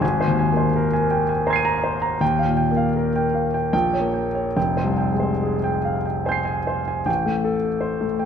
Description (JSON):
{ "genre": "classical, impressionist solo piano", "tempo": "70-83 BPM", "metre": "3/4", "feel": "rubato", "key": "F minor", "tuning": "A4 = 441 Hz", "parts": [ { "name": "clear grand piano", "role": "solo", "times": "0.0-8.3 s", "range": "F1 to Eb7", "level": "-19 LUFS", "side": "equal", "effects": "none" } ], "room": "wet scoring stage reverb, RT60 1.6 s", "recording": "none", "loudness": "-19 LUFS", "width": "side -7 dB against mid", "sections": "0.0-7.1 A section; 7.1-8.3 B section", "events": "none", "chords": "0.0 Abadd9; 2.2 Ebadd9; 3.7 Bbm6; 4.6 Fmadd9; 7.1 Am7" }